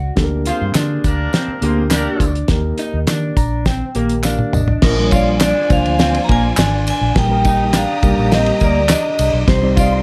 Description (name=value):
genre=uptempo 1960s-style soul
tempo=103 BPM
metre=4/4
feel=straight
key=Bb mixolydian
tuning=A4 = 439 Hz
part: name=electric guitar through a small old amp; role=riff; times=0.0-9.9 s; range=Bb3 to F#4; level=-26 LUFS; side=equal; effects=none
part: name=vintage muted fingered electric bass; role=bass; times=0.0-10.0 s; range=Ab1 to Eb3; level=-22 LUFS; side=equal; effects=none
part: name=mellow reed electric piano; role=accompaniment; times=0.2-10.0 s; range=Eb3 to Bb5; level=-23 LUFS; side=equal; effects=fast tremolo
part: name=cloth-damped thuddy drum kit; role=drums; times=0.2-9.9 s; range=crash cymbal, hi-hat, kick drum, ride cymbal, snare drum, toms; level=-20 LUFS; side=equal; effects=none
part: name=dark horn section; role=second line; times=0.5-2.3 s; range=Bb3 to C5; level=-27 LUFS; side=equal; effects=none
part: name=tambourine and handclaps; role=percussion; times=0.5-9.9 s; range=none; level=-29 LUFS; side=equal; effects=none
part: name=vibraphone with medium hard mallets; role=melody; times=4.8-10.0 s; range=Bb4 to Bb5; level=-21 LUFS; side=equal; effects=tape echo
part: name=warm studio violin section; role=second line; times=4.8-10.0 s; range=Eb4 to Eb6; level=-29 LUFS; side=equal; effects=none
room=moderate club reverb, RT60 0.8 s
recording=none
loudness=-16 LUFS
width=mono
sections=0.0-4.8 A section; 4.8-10.0 B section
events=reed electric piano fill 3.1-4.8; drum fill 4.2-4.8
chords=0.2 Gm/D; 2.5 Eb; 4.8 Bb; 7.2 Eb/Bb; 9.5 Cm